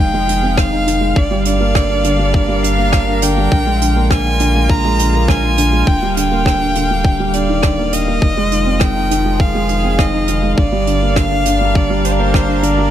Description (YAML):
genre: piano and strings electronica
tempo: 102 BPM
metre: 4/4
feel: straight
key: unclear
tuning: A4 = 437 Hz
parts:
  - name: clear violin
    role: melody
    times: 0.0-12.9 s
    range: C5 to Bb5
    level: -19 LUFS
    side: equal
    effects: tape echo
  - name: dark chamber string section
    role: sustained chords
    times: 0.0-12.9 s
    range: F3 to F5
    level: -23 LUFS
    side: equal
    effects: sidechain pumping
  - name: felt-muted upright piano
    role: riff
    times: 0.0-12.9 s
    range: D3 to Eb4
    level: -18 LUFS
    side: right 2 dB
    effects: tape echo
  - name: warm sub bass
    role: bass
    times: 0.0-12.9 s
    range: Eb1 to Bb1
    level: -18 LUFS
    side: equal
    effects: sidechain pumping
  - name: jazz brush drum kit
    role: drums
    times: 0.3-12.8 s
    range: hi-hat, rim click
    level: -22 LUFS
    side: right 3 dB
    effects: none
  - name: electronic kick drum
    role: drums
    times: 0.6-12.5 s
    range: none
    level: -14 LUFS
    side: equal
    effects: none
room: light reverb, small room ambience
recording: none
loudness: -12 LUFS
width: side -11 dB against mid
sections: 0.0-12.9 A section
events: none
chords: 0.0 Fm7; 1.2 Gm7; 3.5 Bb7; 5.9 Ebmaj7; 8.2 Fm7; 10.6 Gm7